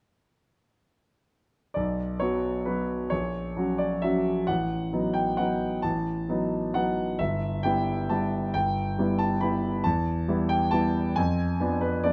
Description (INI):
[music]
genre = classical, piano waltz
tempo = 134 BPM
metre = 3/4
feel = rubato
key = unclear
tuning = A4 = 440 Hz
[part]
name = clear concert grand piano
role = solo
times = 1.7-12.1 s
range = G1 to B5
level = -27 LUFS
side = equal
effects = none
[sound]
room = moderate studio reverb, RT60 0.8 s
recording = none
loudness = -27 LUFS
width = mono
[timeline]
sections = 1.8-12.1 A section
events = none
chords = 1.8 Bm; 3.1 F#/A#; 4.5 B7/A; 7.2 Em/G; 9.8 Em; 11.2 Fdim7